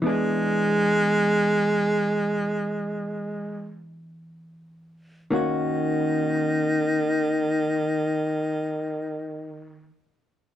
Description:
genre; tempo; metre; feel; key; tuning
jazz ballad; free time; none; none; Eb minor; A4 = 440 Hz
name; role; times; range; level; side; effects
vintage hollow-body jazz guitar; accompaniment; 0.0-9.9 s; Eb3 to G#4; -29 LUFS; left 1 dB; none
breathy baritone saxophone; melody; 0.1-9.9 s; Eb3 to G#3; -23 LUFS; equal; none
room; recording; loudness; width
light reverb; dark, warm production; -22 LUFS; side -11 dB against mid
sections
0.0-5.3 A section; 5.3-10.6 B section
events
slowing down 0.0-5.3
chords
0.0 E7; 5.3 Ebm7

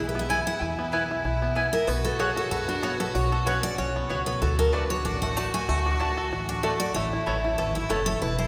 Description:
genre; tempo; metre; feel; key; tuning
bluegrass; 189 BPM; 4/4; swing 54% on 8ths; E mixolydian; A4 = 440 Hz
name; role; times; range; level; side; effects
clear fiddle; second line; 0.0-8.5 s; E4 to F#4; -34 LUFS; equal; none
picked steel-string acoustic guitar; accompaniment; 0.0-8.5 s; D4 to A5; -32 LUFS; equal; none
bluegrass banjo; arpeggios; 0.0-8.5 s; A3 to A4; -34 LUFS; equal; none
upright bass; bass; 0.0-8.5 s; E1 to F#2; -32 LUFS; equal; none
mandolin; stabs; 0.3-8.0 s; A3 to A5; -34 LUFS; equal; none
room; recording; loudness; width
wet cathedral reverb, RT60 4.7 s; recorded in a church or concert hall; -26 LUFS; mono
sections
0.0-8.5 A section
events
steel-string acoustic guitar solo 0.0-8.5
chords
0.0 E; 1.9 Bsus2; 4.4 D; 7.0 Aadd9

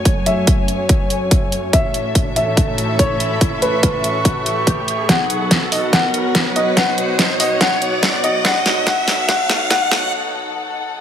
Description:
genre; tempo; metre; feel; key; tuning
heavy wobble dubstep; 143 BPM; 4/4; swing 55% on 16ths, half-time; unclear; A4 = 440 Hz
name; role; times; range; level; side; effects
dark grand piano; melody; 0.0-10.1 s; B4 to F#5; -21 LUFS; left 1 dB; tape echo
dark studio string section; sustained chords; 0.0-11.0 s; F#2 to G#5; -23 LUFS; left 1 dB; sidechain pumping
riser; sound effects; 0.2-10.1 s; none; -24 LUFS; equal; none
airy breathy pad; texture; 0.0-10.1 s; B3 to C#6; -24 LUFS; right 1 dB; chorus, sidechain pumping
dubstep drum kit; drums; 0.1-10.0 s; hi-hat, snare drum; -18 LUFS; equal; overdrive
electronic kick drum; drums; 0.1-9.8 s; none; -17 LUFS; equal; overdrive
room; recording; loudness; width
moderate lush hall reverb, RT60 2.1 s; high-pass filter; -14 LUFS; side -9 dB against mid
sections
0.0-11.0 A section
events
build-up 0.0-11.0; filter sweep 0.0-11.0; riser 0.2-10.1; drum fill 5.1-10.1; break 10.1-11.0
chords
0.0 F#madd9; 1.7 A; 5.1 B

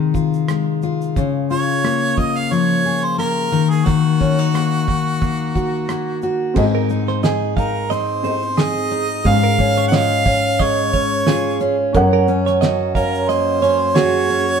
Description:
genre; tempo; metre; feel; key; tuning
acoustic pop; 89 BPM; 4/4; swing 55% on 16ths; unclear; A4 = 441 Hz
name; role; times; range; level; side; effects
picked steel-string acoustic guitar; accompaniment; 0.0-14.6 s; Gb2 to Ab4; -18 LUFS; left 2 dB; none
cloth-damped thuddy drum kit; drums; 0.1-14.6 s; crash cymbal, kick drum, rim click, shaker, snare drum; -21 LUFS; right 2 dB; none
bright harmonica; melody; 1.5-14.6 s; Gb4 to Gb5; -21 LUFS; right 2 dB; none
dark upright piano; accompaniment; 6.5-14.6 s; Ab3 to Gb5; -23 LUFS; right 1 dB; none
direct-recorded clean electric guitar; arpeggios; 6.7-14.5 s; Ab4 to F5; -23 LUFS; right 10 dB; none
room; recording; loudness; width
moderate stone room reverb, RT60 1.1 s; band playing live in one room; -15 LUFS; side -6 dB against mid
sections
0.0-6.6 A section; 6.6-14.6 B section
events
none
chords
0.0 Fm7/C; 1.2 Bbm7/Db; 3.5 Ebm; 6.6 Ab; 9.3 Db/Ab; 11.9 Gb

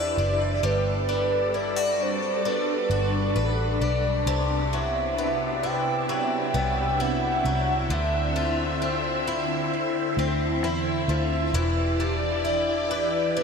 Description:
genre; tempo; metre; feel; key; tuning
dream pop; 66 BPM; 4/4; straight; G major; A4 = 443 Hz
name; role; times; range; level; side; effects
hollow clarinet-like synth lead; melody; 0.0-13.4 s; B4 to G5; -28 LUFS; right 1 dB; chorus, ping-pong delay
phased string machine; sustained chords; 0.0-13.4 s; C3 to E5; -29 LUFS; right 2 dB; ensemble chorus, phaser
picked twelve-string acoustic guitar; arpeggios; 0.0-13.4 s; C3 to B4; -28 LUFS; left 3 dB; analog chorus, ping-pong delay
vintage muted picked electric bass; bass; 0.0-13.4 s; E1 to E2; -28 LUFS; equal; none
glassy synth bell; texture; 4.3-6.2 s; A5; -41 LUFS; left 2 dB; none
room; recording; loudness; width
moderate shimmer reverb, RT60 5.8 s; none; -22 LUFS; side -5 dB against mid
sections
0.0-13.4 A section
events
none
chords
0.0 Em7; 0.6 Gmaj9; 4.3 Cmaj9#11; 7.9 Dm9; 11.5 Em7

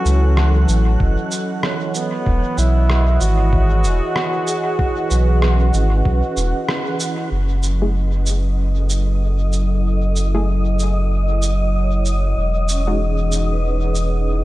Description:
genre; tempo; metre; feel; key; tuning
ambient dub; 95 BPM; 4/4; swing 59% on 16ths; F# dorian; A4 = 440 Hz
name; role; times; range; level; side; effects
bright trombone; melody; 0.0-6.7 s; B3 to F#4; -25 LUFS; right 1 dB; vintage 12-bit sampler grit, dub echo
warm analog pad; sustained chords; 0.0-14.4 s; E3 to F#5; -25 LUFS; equal; chorus
vibraphone with medium mallets; arpeggios; 0.0-14.4 s; C#4 to D#5; -29 LUFS; right 4 dB; low-pass filter, dub echo
wind-like tuned noise texture; texture; 0.0-14.4 s; D#5 to F#6; -30 LUFS; left 1 dB; built-in reverb
warm sub bass; bass; 0.1-14.4 s; E1 to C#2; -16 LUFS; equal; none
electronic shaker and rim click; drums; 0.1-14.1 s; none; -26 LUFS; right 1 dB; dub echo
electronic kick drum; drums; 1.0-6.2 s; none; -20 LUFS; equal; none
filtered dub chord stab; stabs; 7.8-13.0 s; G#3 to G#4; -28 LUFS; equal; chorus, dub echo
room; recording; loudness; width
light reverb, digital ambience; none; -16 LUFS; side -17 dB against mid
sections
0.0-7.3 A section; 7.3-14.4 B section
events
band accent 6.7-7.0; filter sweep on analog synth pad 7.3-14.4; filter sweep on vibraphone 7.3-14.4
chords
0.0 F#m7; 2.3 Emaj9; 7.3 F#m7; 12.4 Emaj9

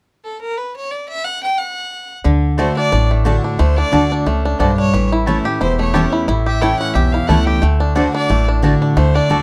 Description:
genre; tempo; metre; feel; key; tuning
bluegrass; 179 BPM; 4/4; swing 55% on 8ths; D major; A4 = 437 Hz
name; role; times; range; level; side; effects
clear fiddle; melody; 0.2-9.4 s; A4 to G5; -24 LUFS; equal; none
picked steel-string acoustic guitar; accompaniment; 2.2-9.4 s; E2 to F#4; -20 LUFS; equal; none
bluegrass banjo; arpeggios; 2.2-9.4 s; D3 to G4; -23 LUFS; equal; none
upright bass; bass; 2.3-9.4 s; E1 to D2; -19 LUFS; equal; none
mandolin; stabs; 2.6-9.4 s; A3 to A5; -23 LUFS; equal; none
room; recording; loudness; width
light reverb; dark, warm production; -16 LUFS; mono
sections
0.0-2.2 A section; 2.2-9.4 B section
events
none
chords
0.0 N.C.; 2.2 D; 4.9 A; 7.6 D

